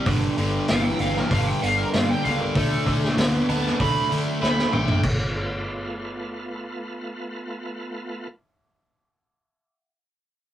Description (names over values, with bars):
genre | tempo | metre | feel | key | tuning
blues rock power trio and southern rock | 97 BPM | 4/4 | straight | G mixolydian | A4 = 440 Hz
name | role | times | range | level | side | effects
bright tonewheel organ | sustained chords | 0.0-8.3 s | F#3 to F4 | -35 LUFS | right 1 dB | slow rotary speaker, chorus vibrato
cranked stack guitar | riff | 0.0-5.0 s | G2 to B3 | -25 LUFS | equal | overdrive
vintage muted picked electric bass | bass | 0.1-8.6 s | G1 to D3 | -28 LUFS | equal | none
vintage drum kit | drums | 0.1-5.2 s | crash cymbal, hi-hat, kick drum, snare drum, toms | -24 LUFS | equal | none
lead guitar through a small cranked amp | melody | 0.7-5.0 s | A4 to B5 | -26 LUFS | right 2 dB | wah, overdrive
room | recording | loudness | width
moderate booth ambience, RT60 0.2 s | rough rehearsal-room recording, warm saturation | -20 LUFS | side -11 dB against mid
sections
0.0-5.0 A section; 5.0-7.5 B section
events
lead electric guitar solo 0.0-5.0; drum fill 4.4-5.0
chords
0.1 G7; 2.6 D7; 5.0 G9